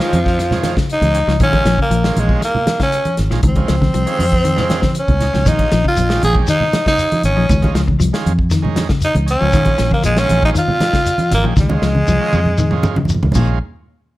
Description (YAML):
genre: afrobeat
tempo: 118 BPM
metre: 4/4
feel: straight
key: Bb minor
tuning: A4 = 440 Hz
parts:
  - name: raspy tenor saxophone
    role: melody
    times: 0.0-13.1 s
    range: F3 to Ab4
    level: -17 LUFS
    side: equal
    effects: slapback echo
  - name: combo organ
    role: accompaniment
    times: 0.0-13.6 s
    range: Eb3 to G4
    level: -27 LUFS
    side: right 8 dB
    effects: none
  - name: clean electric guitar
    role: arpeggios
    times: 0.0-13.5 s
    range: Bb2 to F3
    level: -21 LUFS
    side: left 4 dB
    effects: none
  - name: warm soul drum kit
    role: drums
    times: 0.0-13.5 s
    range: crash cymbal, hi-hat, kick drum, snare drum, toms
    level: -20 LUFS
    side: equal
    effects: none
  - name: fingered electric bass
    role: bass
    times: 0.1-13.6 s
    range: Ab1 to F2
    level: -17 LUFS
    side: equal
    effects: none
  - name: congas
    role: percussion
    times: 0.1-13.5 s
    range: none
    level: -21 LUFS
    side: right 2 dB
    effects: none
  - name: shekere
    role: percussion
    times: 5.5-13.5 s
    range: none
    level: -22 LUFS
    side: left 1 dB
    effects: none
room: light reverb, studio reverb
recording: none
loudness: -13 LUFS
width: side -16 dB against mid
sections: 0.0-13.6 A section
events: drum fill 4.8-5.5, 11.6-13.6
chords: 0.0 Db; 1.4 Bbm7; 3.4 Dbmaj7; 5.5 Bbm7; 7.5 Db; 9.5 Bbm7; 11.6 Db; 13.4 Bbm7; 13.6 N.C.